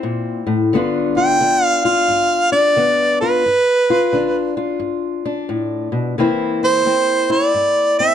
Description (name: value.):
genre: acoustic country blues, solo or duo.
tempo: 88 BPM.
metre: 4/4.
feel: swing 64% on 8ths.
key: G mixolydian.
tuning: A4 = 438 Hz.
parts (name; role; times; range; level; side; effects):
fingerpicked old ladder-braced acoustic guitar; accompaniment; 0.0-8.1 s; G2 to F4; -19 LUFS; left 3 dB; none.
clear harmonica; melody; 1.2-8.1 s; B4 to G5; -14 LUFS; right 1 dB; plate reverb.
room: moderate booth ambience, RT60 0.3 s.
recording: dark, warm production.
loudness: -14 LUFS.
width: side -9 dB against mid.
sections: 0.0-8.1 A section.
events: none.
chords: 0.0 C7; 0.7 G7; 6.2 C7.